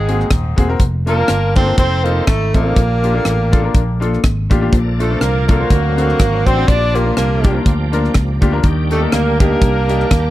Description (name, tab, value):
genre	uptempo gospel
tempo	122 BPM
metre	4/4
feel	swing 55% on 8ths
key	Bb major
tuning	A4 = 440 Hz
part	breathy tenor saxophone	melody	0.0-10.3 s	Ab3 to D4	-20 LUFS	right 4 dB	none
part	clear horn section	melody	0.0-10.3 s	Ab3 to D5	-23 LUFS	left 4 dB	none
part	bright baby grand piano	accompaniment	0.0-10.1 s	Ab2 to C5	-20 LUFS	left 3 dB	none
part	fingered electric bass	bass	0.0-10.3 s	Eb1 to Eb2	-17 LUFS	equal	none
part	crisp fusion drum kit	drums	0.1-10.2 s	hi-hat, kick drum, rim click	-15 LUFS	equal	none
part	bright tonewheel organ	sustained chords	4.7-10.3 s	F3 to A4	-25 LUFS	right 4 dB	chorus vibrato, slow rotary speaker
room	small room ambience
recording	dry, close 1970s-style studio recording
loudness	-12 LUFS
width	side -15 dB against mid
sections	0.0-10.3 A section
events	none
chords	0.0 Ab9; 0.8 Bb/F; 1.8 F7; 2.8 Bb6; 4.7 Bbmaj7; 5.7 D7; 6.7 Gm7/Bb; 8.6 Ebmaj7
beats	0.30 | 0.80 1.29 1.78 2.27 | 2.76 3.25 3.75 4.24 | 4.73 5.22 5.71 6.19 | 6.68 7.17 7.66 8.15 | 8.64 9.13 9.62 10.11